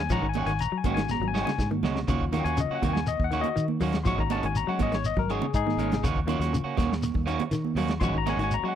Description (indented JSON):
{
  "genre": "afrobeat",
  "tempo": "121 BPM",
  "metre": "4/4",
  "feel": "straight",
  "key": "unclear",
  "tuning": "A4 = 441 Hz",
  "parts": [
    { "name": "barky tine electric piano", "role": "accompaniment", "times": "0.0-8.8 s", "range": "Gb3 to Db6", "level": "-30 LUFS", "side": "left 12 dB", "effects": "overdrive" },
    { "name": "semi-hollow electric guitar", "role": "arpeggios", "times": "0.0-8.8 s", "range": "Bb2 to Gb3", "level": "-33 LUFS", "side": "left 5 dB", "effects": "none" },
    { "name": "fingered electric bass", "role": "bass", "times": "0.0-8.7 s", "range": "Ab1 to Eb3", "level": "-30 LUFS", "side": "equal", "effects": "none" },
    { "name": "electric guitar at the edge of break-up", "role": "stabs", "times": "0.1-8.8 s", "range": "Eb3 to Gb4", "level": "-31 LUFS", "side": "right 8 dB", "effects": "spring reverb" },
    { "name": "warm soul drum kit", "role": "drums", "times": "0.1-8.6 s", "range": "hi-hat, kick drum, snare drum", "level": "-31 LUFS", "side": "equal", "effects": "none" },
    { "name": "shekere", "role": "percussion", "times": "0.1-8.6 s", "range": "none", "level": "-33 LUFS", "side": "left 2 dB", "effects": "none" },
    { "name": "congas", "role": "percussion", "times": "0.4-8.4 s", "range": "none", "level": "-34 LUFS", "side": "right 15 dB", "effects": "none" }
  ],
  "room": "little or no reverb",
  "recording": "dry, close 1970s-style studio recording",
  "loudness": "-24 LUFS",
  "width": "side -10 dB against mid",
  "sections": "0.0-8.8 A section",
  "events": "tine electric piano solo 0.0-8.8; drum fill 1.1-2.1",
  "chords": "0.1 Ab7sus4; 2.1 Ebm7; 4.1 Ab7sus4; 6.0 Ebm7; 8.0 Ab7sus4",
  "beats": "| 0.10 0.60 1.09 1.59 | 2.08 2.58 3.07 3.57 | 4.06 4.56 5.05 5.55 | 6.04 6.54 7.03 7.52 | 8.02 8.51"
}